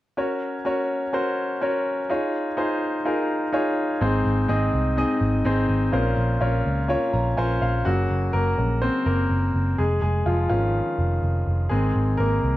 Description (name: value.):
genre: piano-driven pop.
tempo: 125 BPM.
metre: 4/4.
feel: straight.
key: unclear.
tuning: A4 = 441 Hz.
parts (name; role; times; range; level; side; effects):
bright grand piano; accompaniment; 0.2-12.6 s; Ab2 to Bb5; -22 LUFS; left 1 dB; none.
vintage muted picked electric bass; bass; 4.0-12.6 s; F1 to Db2; -23 LUFS; right 1 dB; none.
room: moderate large studio reverb, RT60 1.1 s, studio ambience.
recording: dark, warm production.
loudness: -20 LUFS.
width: side -15 dB against mid.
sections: 0.2-7.9 A section; 7.9-12.6 B section.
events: grand piano fill 6.9-7.9; grand piano solo 7.9-12.6.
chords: 0.2 Gb; 2.1 Dbadd9; 4.0 Ab; 5.9 Bbmadd9; 7.9 Gb; 9.8 Dbadd9/F; 11.7 Ab.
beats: | 0.17 0.65 1.13 1.61 | 2.09 2.57 3.06 3.54 | 4.02 4.50 4.98 5.46 | 5.94 6.42 6.90 7.38 | 7.86 8.34 8.82 9.31 | 9.79 10.27 10.75 11.23 | 11.71 12.19.